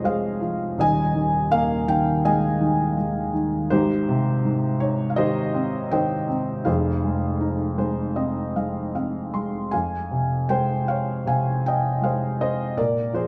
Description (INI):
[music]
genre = classical, lyrical solo piano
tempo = 80 BPM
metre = 4/4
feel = rubato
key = F minor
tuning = A4 = 438 Hz
[part]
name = felt-muted upright piano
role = solo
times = 0.0-13.3 s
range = Eb1 to C6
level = -23 LUFS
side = equal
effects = none
[sound]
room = moderate recital hall reverb, RT60 1.4 s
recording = none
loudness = -23 LUFS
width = mono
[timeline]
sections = 0.0-9.7 A section; 9.7-13.3 B section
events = felt piano fill 7.4-9.7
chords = 0.0 Fm; 0.8 Ebsus4; 3.7 Abmaj7; 6.7 Fm7; 9.7 Fm; 12.8 Bb7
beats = 0.04 | 0.79 1.52 2.25 2.98 | 3.72 4.45 5.18 5.93 | 6.67 7.42 8.17 8.95 | 9.73 10.50 11.27 12.02 | 12.77